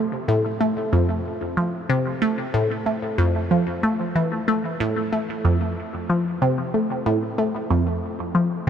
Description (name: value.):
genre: ambient.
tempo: 93 BPM.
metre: 4/4.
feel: straight.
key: F major.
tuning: A4 = 440 Hz.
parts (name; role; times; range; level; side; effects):
resonant blip pluck; solo; 0.0-8.7 s; F2 to A3; -20 LUFS; equal; phaser, tape echo.
room: moderate huge ambient reverb, RT60 8.0 s.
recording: none.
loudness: -20 LUFS.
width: side -8 dB against mid.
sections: 0.0-8.7 A section.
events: none.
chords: none.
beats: 0.61 1.25 | 1.90 2.54 3.19 3.83 | 4.48 5.12 5.77 6.42 | 7.06 7.71 8.35.